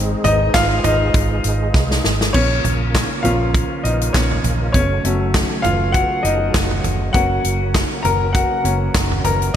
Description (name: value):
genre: piano-driven pop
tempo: 100 BPM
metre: 4/4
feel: swing 56% on 16ths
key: unclear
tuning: A4 = 440 Hz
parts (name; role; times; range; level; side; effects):
- bright upright piano; accompaniment; 0.0-9.6 s; Eb3 to Bb5; -20 LUFS; left 2 dB; none
- tonewheel organ; sustained chords; 0.0-9.6 s; Db3 to F4; -26 LUFS; right 3 dB; chorus vibrato, fast rotary speaker
- vintage muted fingered electric bass; bass; 0.0-9.5 s; Gb1 to C2; -20 LUFS; right 1 dB; none
- natural country drum kit; drums; 0.2-9.5 s; crash cymbal, handclaps, hi-hat, kick drum, snare drum, toms; -19 LUFS; equal; none
room: light reverb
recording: none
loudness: -15 LUFS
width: side -10 dB against mid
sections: 0.0-2.3 A section; 2.3-9.6 B section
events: upright piano solo 0.0-2.3, 2.3-9.6; drum fill 1.7-2.3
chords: 0.0 Ab; 2.3 Bbm; 4.7 Gbm; 7.1 Gb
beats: 0.55 1.15 1.75 | 2.35 2.94 3.54 4.14 | 4.75 5.34 5.95 6.55 | 7.15 7.75 8.35 8.95 | 9.55